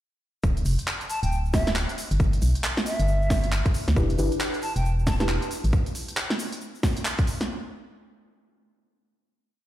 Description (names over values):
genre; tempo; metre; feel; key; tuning
UK garage, two-step garage; 136 BPM; 4/4; swing 61% on 16ths; unclear; A4 = 440 Hz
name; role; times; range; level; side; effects
organ-like FM bass; bass; 0.4-5.7 s; D1 to D2; -23 LUFS; equal; none
electronic kick drum; drums; 0.4-7.3 s; none; -25 LUFS; equal; none
egg shaker; percussion; 0.4-7.5 s; none; -44 LUFS; left 3 dB; none
garage drum kit; drums; 0.6-7.5 s; handclaps, hi-hat, snare drum; -29 LUFS; right 1 dB; none
hollow concert flute; melody; 1.1-5.3 s; E5 to A5; -32 LUFS; equal; tape echo
deep mellow chord stab; stabs; 4.0-5.3 s; D4 to B4; -30 LUFS; left 1 dB; chorus, tape echo
room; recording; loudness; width
digital ambience; played on a big sound system in a bare room, stone room reverb; -22 LUFS; side -14 dB against mid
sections
0.4-7.5 groove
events
none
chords
0.4 N.C.; 4.0 Em7; 5.5 N.C.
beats
| 0.44 0.88 1.32 1.76 | 2.20 2.64 3.08 3.52 | 3.96 4.41 4.85 5.29 | 5.73 6.17 6.61 7.05